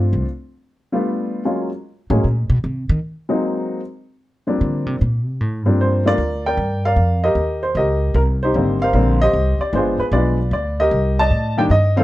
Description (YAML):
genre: jazz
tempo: 152 BPM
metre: 3/4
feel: swing 66% on 8ths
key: unclear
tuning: A4 = 440 Hz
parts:
  - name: warm baby grand piano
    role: melody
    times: 0.0-12.0 s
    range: D3 to A5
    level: -18 LUFS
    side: equal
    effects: none
  - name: upright bass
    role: bass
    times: 0.0-12.0 s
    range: G1 to Eb3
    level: -18 LUFS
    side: equal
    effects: none
room: light reverb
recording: dark, warm production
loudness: -16 LUFS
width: side -16 dB against mid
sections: 0.0-6.2 A section; 6.2-12.0 B section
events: upright bass solo 0.0-6.2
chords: 0.3 G9; 1.5 Gb; 2.6 Ab9; 3.8 Bb69; 6.2 Gm7; 7.4 Eb6; 8.6 Abmaj9#11; 9.7 G7b9; 10.9 Cm9